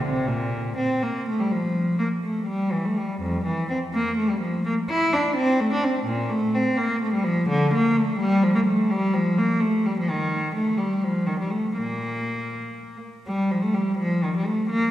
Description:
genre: classical, baroque-style suite movement for unaccompanied cello.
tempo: 77-88 BPM (dotted quarters).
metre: 6/8.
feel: rubato.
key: F major, Bb major from 7.5 s.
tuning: A4 = 437 Hz.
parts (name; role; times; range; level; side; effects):
rich cello; solo; 0.0-14.9 s; F2 to E4; -21 LUFS; equal; none.
room: wet concert hall reverb, RT60 2.4 s.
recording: heard from further back in the room.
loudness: -21 LUFS.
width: side -13 dB against mid.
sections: 0.0-1.8 A section; 1.8-13.3 A section; 13.3-14.9 B section.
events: none.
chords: none.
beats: | 0.28 1.02 | 1.75 2.47 | 3.21 3.94 | 4.66 5.37 | 6.08 6.78 | 7.51 8.22 | 8.92 9.62 | 10.31 11.02 | 11.76 12.51 | 13.27 13.98 | 14.69.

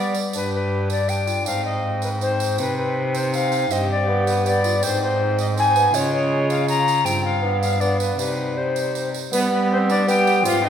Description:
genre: classical, renaissance-style consort dance.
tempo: 160 BPM.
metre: 3/4.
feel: straight.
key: unclear.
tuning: A4 = 439 Hz.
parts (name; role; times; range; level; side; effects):
mellow alto recorder; melody; 0.0-10.7 s; B4 to Bb5; -22 LUFS; left 2 dB; none.
warm viola; second line; 0.0-10.7 s; B3 to D5; -29 LUFS; right 2 dB; none.
warm bassoon; accompaniment; 0.0-10.7 s; G3 to D4; -24 LUFS; equal; none.
rich cello; bass; 0.0-10.7 s; G2 to G3; -24 LUFS; equal; none.
tambourine; percussion; 0.1-10.6 s; none; -32 LUFS; right 7 dB; none.
room: wet scoring stage reverb, RT60 1.9 s.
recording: recorded in a church or concert hall.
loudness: -18 LUFS.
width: side -8 dB against mid.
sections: 0.3-9.3 A section; 9.3-10.7 A section.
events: none.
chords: 0.3 G; 1.5 Ab; 2.6 Cm; 3.7 Gsus4; 4.1 G; 4.8 Ab; 5.9 Db; 7.1 G7sus4; 7.4 G; 8.2 Cm; 9.3 G.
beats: | 0.34 0.72 1.09 | 1.47 1.84 2.22 | 2.59 2.97 3.34 | 3.71 4.09 4.46 | 4.83 5.20 5.57 | 5.95 6.32 6.69 | 7.06 7.44 7.81 | 8.19 8.57 8.95 | 9.33 9.71 10.08 | 10.46.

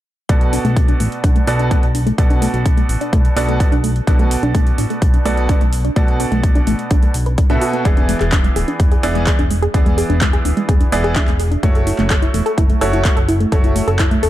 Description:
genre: progressive house.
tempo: 127 BPM.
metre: 4/4.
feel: straight.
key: B dorian.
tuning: A4 = 442 Hz.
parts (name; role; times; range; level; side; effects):
wide unison pluck; arpeggios; 0.3-14.3 s; G#3 to B4; -21 LUFS; equal; sidechain pumping, tape echo.
bright grand piano; stabs; 0.3-14.3 s; B2 to E5; -21 LUFS; right 2 dB; sidechain pumping, low-pass filter, tape echo.
fat analog bass; bass; 0.3-14.3 s; D1 to B1; -19 LUFS; equal; sidechain pumping.
big-room dance drum kit; drums; 0.3-14.3 s; handclaps, hi-hat; -26 LUFS; equal; overdrive, sidechain pumping on hats.
electronic kick drum; drums; 0.3-14.1 s; none; -14 LUFS; equal; overdrive.
room: digital ambience.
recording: dark, warm production.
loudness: -13 LUFS.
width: side -14 dB against mid.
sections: 0.3-14.3 A section.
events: filter sweep on synth pluck 0.3-14.3.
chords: 0.3 Bm7; 7.9 E7; 11.6 F#m7.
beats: | 0.29 0.77 1.24 1.71 | 2.18 2.66 3.13 3.60 | 4.07 4.54 5.02 5.49 | 5.96 6.43 6.91 7.38 | 7.85 8.32 8.80 9.27 | 9.74 10.21 10.69 11.16 | 11.63 12.10 12.58 13.05 | 13.52 13.99.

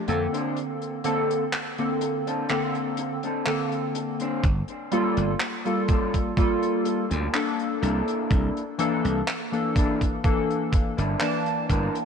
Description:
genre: vaporwave.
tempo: 62 BPM.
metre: 4/4.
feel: straight.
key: unclear.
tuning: A4 = 440 Hz.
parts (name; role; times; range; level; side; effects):
warbly lo-fi synth keys; accompaniment; 0.0-12.1 s; D3 to A5; -25 LUFS; left 1 dB; analog chorus, vintage 12-bit sampler grit, tape echo.
electric guitar at the edge of break-up; riff; 0.1-12.1 s; Bb3 to G5; -32 LUFS; equal; wide subtle chorus, vintage 12-bit sampler grit, tape echo.
slap bass; bass; 0.1-11.9 s; G1 to F2; -26 LUFS; right 1 dB; none.
damped 70s drum kit; drums; 0.1-12.1 s; handclaps, hi-hat; -32 LUFS; equal; vintage 12-bit sampler grit, small room ambience, gated reverb.
electronic kick drum; drums; 4.4-11.9 s; none; -23 LUFS; right 1 dB; vintage 12-bit sampler grit, small room ambience.
room: light reverb, small room ambience.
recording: none.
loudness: -23 LUFS.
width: side -6 dB against mid.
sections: 0.0-4.4 A section; 4.4-12.1 B section.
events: clean electric guitar fill 10.7-12.1.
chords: 0.0 F69; 0.6 Bbmaj9; 4.4 Gm9; 7.8 C13.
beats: | 0.57 1.54 2.50 3.47 | 4.44 5.41 6.38 7.34 | 8.31 9.28 10.25 11.21.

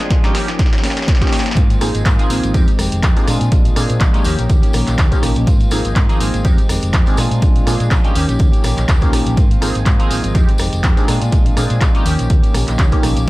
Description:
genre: filtered disco house.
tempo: 123 BPM.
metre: 4/4.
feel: swing 55% on 16ths.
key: Ab major.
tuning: A4 = 440 Hz.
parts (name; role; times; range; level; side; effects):
funky polysynth comp; accompaniment; 0.0-13.3 s; F3 to Ab4; -22 LUFS; equal; chorus, phaser, cassette tape, sidechain pumping.
direct-recorded clean electric guitar; riff; 0.0-13.3 s; Eb3 to G4; -24 LUFS; equal; spring reverb, sidechain pumping.
hollow-body short-scale fingered electric bass; bass; 0.0-13.2 s; F1 to Bb2; -19 LUFS; equal; sidechain pumping, high-pass filter.
punchy analog drum machine; drums; 0.0-13.3 s; handclaps, hi-hat, rim click, snare drum; -24 LUFS; equal; sidechain pumping on hats, high-pass filter on hats, high-pass filter on snare, high-pass filter on room.
electronic kick drum; drums; 0.1-13.0 s; none; -14 LUFS; equal; none.
tambourine; percussion; 1.6-13.3 s; none; -31 LUFS; left 2 dB; sidechain pumping on perc.
room: digital ambience.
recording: dark, warm production.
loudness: -12 LUFS.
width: side -19 dB against mid.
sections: 0.0-1.6 A section; 1.6-13.3 B section.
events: build-up 0.0-1.6; drum fill 0.0-1.6; filter sweep 0.0-1.6; drop 1.6-13.3.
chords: 0.3 Eb7; 1.6 Ab69; 2.5 Fm9; 3.3 Bb7; 4.3 Eb7; 5.5 Ab69; 6.4 Fm9; 7.2 Bb7; 8.2 Eb7; 9.4 Ab69; 10.3 Fm9; 11.1 Bb7; 12.1 Eb7.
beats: 0.11 0.59 1.08 | 1.57 2.06 2.54 3.03 | 3.52 4.01 4.50 4.98 | 5.47 5.96 6.45 6.93 | 7.42 7.91 8.40 8.89 | 9.37 9.86 10.35 10.84 | 11.33 11.81 12.30 12.79 | 13.28.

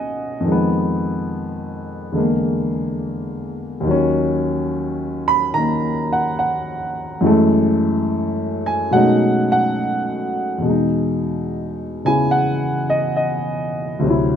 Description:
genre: solo jazz.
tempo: 71 BPM.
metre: 4/4.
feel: swing 69% on 8ths.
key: unclear.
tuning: A4 = 440 Hz.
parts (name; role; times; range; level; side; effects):
warm grand piano; solo; 0.0-14.4 s; D2 to B5; -17 LUFS; equal; none.
room: moderate club reverb, RT60 0.7 s.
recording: minimal, uncompressed stereo recording.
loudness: -17 LUFS.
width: side -8 dB against mid.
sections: 0.0-14.4 A section.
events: none.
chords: 0.5 Fm7b5; 2.2 E7#11; 3.8 D#m7; 7.2 F#m9; 8.9 B13; 10.6 Emaj7.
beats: | 0.46 1.31 2.15 3.00 | 3.85 4.70 5.54 6.39 | 7.24 8.09 8.94 9.78 | 10.63 11.48 12.33 13.18 | 14.03.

